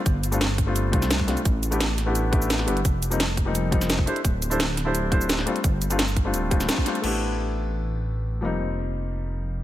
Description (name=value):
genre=liquid drum and bass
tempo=172 BPM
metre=4/4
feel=straight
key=A minor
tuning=A4 = 440 Hz
part: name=dark detuned saw bass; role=bass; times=0.1-9.6 s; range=D1 to C2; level=-26 LUFS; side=equal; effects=none
part: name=drum and bass drum kit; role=drums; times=0.1-7.1 s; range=crash cymbal, hi-hat, shaker, snare drum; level=-27 LUFS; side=right 1 dB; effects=overdrive
part: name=electronic kick drum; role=drums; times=0.1-6.8 s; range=none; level=-23 LUFS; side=equal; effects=overdrive
part: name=felt-muted upright piano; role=accompaniment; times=0.3-9.6 s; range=F3 to C5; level=-27 LUFS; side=left 2 dB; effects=ping-pong delay
room=light reverb, digital ambience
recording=none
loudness=-21 LUFS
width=side -13 dB against mid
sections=0.0-7.0 A section; 7.0-9.6 B section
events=band accent 6.7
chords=0.0 G9sus4; 1.5 A9sus4; 2.8 F9sus4; 4.1 D9sus4; 5.5 G9sus4; 7.0 A9sus4; 8.4 F9sus4